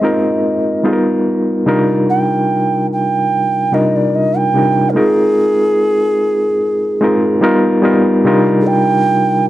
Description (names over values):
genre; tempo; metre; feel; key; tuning
soul; 73 BPM; 4/4; swing 54% on 16ths; C minor; A4 = 444 Hz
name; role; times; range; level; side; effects
round clay ocarina; melody; 0.0-9.5 s; Ab4 to G5; -15 LUFS; right 1 dB; none
overdriven reed electric piano; accompaniment; 0.0-9.5 s; C3 to Bb4; -13 LUFS; equal; fast tremolo
room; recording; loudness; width
small room ambience; dry, close 1970s-style studio recording; -11 LUFS; side -14 dB against mid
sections
0.0-1.7 A section; 1.7-9.5 B section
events
none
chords
0.0 Bb9sus4; 0.8 G7alt; 1.7 Cm11; 5.0 Bb9sus4; 7.4 G7alt; 8.3 Cm11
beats
0.03 0.85 | 1.67 2.49 3.31 4.14 | 4.96 5.78 6.61 7.43 | 8.25 9.08